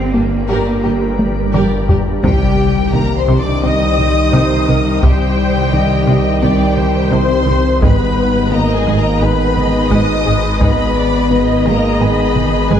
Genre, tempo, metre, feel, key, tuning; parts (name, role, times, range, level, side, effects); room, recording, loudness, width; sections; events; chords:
cinematic, hybrid orchestral and electronic film score; 86 BPM; 4/4; straight; C minor; A4 = 440 Hz
organ-like drone; sustained chords; 0.0-12.8 s; G3 to G5; -23 LUFS; equal; ensemble chorus, built-in reverb
phased detuned saw bass; bass; 0.0-12.8 s; G1 to C2; -18 LUFS; equal; phaser
rich symphonic cello section; bass; 0.0-12.8 s; Ab2 to C4; -21 LUFS; right 2 dB
bright studio violin section; melody; 0.1-12.8 s; G4 to Eb6; -23 LUFS; left 2 dB
rich symphonic viola section; accompaniment; 0.1-12.8 s; G4 to Eb5; -22 LUFS; right 1 dB
resonant blip pluck; arpeggios; 0.1-12.8 s; C3 to Ab4; -24 LUFS; left 4 dB
rich symphonic double bass section; bass; 0.1-12.8 s; Ab1 to G2; -21 LUFS; right 3 dB
bright symphonic violin section; second line; 0.2-12.8 s; D4 to Eb5; -23 LUFS; left 5 dB
dark trombone section; sustained chords; 0.8-12.8 s; D3 to Ab3; -23 LUFS; right 5 dB
mellow French horn section; sustained chords; 0.8-12.8 s; G3 to Bb4; -19 LUFS; left 3 dB
taiko ensemble; drums; 1.2-12.8 s; -18 LUFS; equal
impact; sound effects; 2.2-5.0 s; -21 LUFS; left 1 dB
wet concert hall reverb, RT60 2.3 s; dark, warm production; -11 LUFS; side -9 dB against mid
0.0-2.2 A section; 2.2-12.8 A section
drum fill 1.2-2.2, 12.4-12.8; impact 2.2-5.0
0.0 Gm; 2.2 Cm; 7.8 Abm